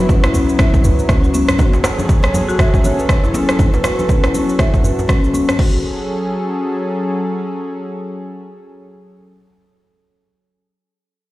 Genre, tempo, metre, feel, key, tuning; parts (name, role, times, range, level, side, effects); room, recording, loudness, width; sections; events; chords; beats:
afro house; 120 BPM; 4/4; swing 59% on 16ths; F# minor; A4 = 440 Hz
warm analog pad; sustained chords; 0.0-9.3 s; F#3 to A4; -22 LUFS; equal; chorus, sidechain pumping
marimba with medium mallets; arpeggios; 0.0-5.8 s; C#4 to E5; -20 LUFS; left 1 dB; sidechain pumping, low-pass filter, digital delay
warm 808-style bass; bass; 0.0-1.5 s; F#1 to C#2; -18 LUFS; equal; sidechain pumping
deep house drum kit; drums; 0.1-5.7 s; crash cymbal, rim click, shaker; -22 LUFS; equal; overdrive
electronic kick drum; drums; 0.1-5.7 s; -15 LUFS; equal; overdrive
djembe; percussion; 0.2-5.6 s; -24 LUFS; right 1 dB
congas; percussion; 0.3-5.5 s; -25 LUFS; left 2 dB
light reverb; played on a big sound system in a bare room, stone room reverb; -13 LUFS; side -17 dB against mid
0.0-5.6 A section; 5.6-9.6 B section
filter sweep on marimba 0.0-5.6
0.0 Bsus4/F#; 1.6 F#m
0.09 0.59 1.09 | 1.59 2.09 2.59 3.09 | 3.59 4.09 4.59 5.09 | 5.59 6.09 6.59 7.09 | 7.59 8.09 8.59 9.09